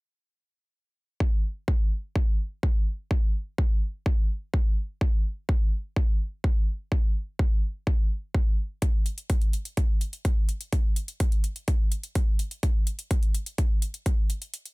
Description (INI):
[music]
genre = EDM, festival progressive house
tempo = 126 BPM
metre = 4/4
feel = straight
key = none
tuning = none
[part]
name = electronic kick drum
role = drums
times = 1.2-14.2 s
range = none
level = -23 LUFS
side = equal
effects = none
[part]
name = electronic hi-hat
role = drums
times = 8.8-14.7 s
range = none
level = -37 LUFS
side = equal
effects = none
[sound]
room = little or no reverb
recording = none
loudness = -24 LUFS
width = side -25 dB against mid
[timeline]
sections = 1.2-14.7 A section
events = break 14.5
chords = none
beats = | 1.20 1.68 2.15 2.63 | 3.11 3.58 4.06 4.54 | 5.01 5.49 5.96 6.44 | 6.92 7.39 7.87 8.35 | 8.82 9.30 9.77 10.25 | 10.73 11.20 11.68 12.15 | 12.63 13.11 13.58 14.06 | 14.54